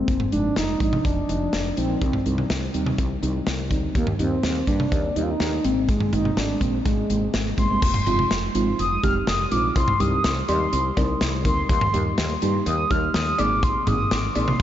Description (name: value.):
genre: synth-pop.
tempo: 124 BPM.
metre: 4/4.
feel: straight.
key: unclear.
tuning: A4 = 440 Hz.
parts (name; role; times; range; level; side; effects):
mellow horn-like synth lead; melody; 0.0-14.6 s; Ab3 to F6; -25 LUFS; equal; chorus, analog delay.
muted felt-like synth keys; accompaniment; 0.0-14.5 s; F3 to Bb4; -27 LUFS; right 1 dB; chorus.
woody fretless electric bass; bass; 0.1-14.6 s; F1 to G2; -27 LUFS; equal; lush chorus.
modern studio drum kit; drums; 0.1-14.6 s; cowbell, crash cymbal, hi-hat, kick drum, snare drum, toms; -25 LUFS; equal; none.
room: moderate cathedral reverb, RT60 6.2 s.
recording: dreamy mix soaked in reverb, nothing above 7.6 kHz.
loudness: -20 LUFS.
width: side -11 dB against mid.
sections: 0.0-7.8 A section; 7.8-14.6 B section.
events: none.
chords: 0.1 Fm7; 2.0 Cm; 4.0 Eb; 5.6 Abadd9; 7.8 Fm7; 9.8 Cm; 11.7 Eb; 13.4 Abadd9.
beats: | 0.08 0.56 1.05 1.53 | 2.02 2.50 2.98 3.47 | 3.95 4.44 4.92 5.40 | 5.89 6.37 6.86 7.34 | 7.82 8.31 8.79 9.28 | 9.76 10.24 10.73 11.21 | 11.69 12.18 12.66 13.15 | 13.63 14.11 14.60.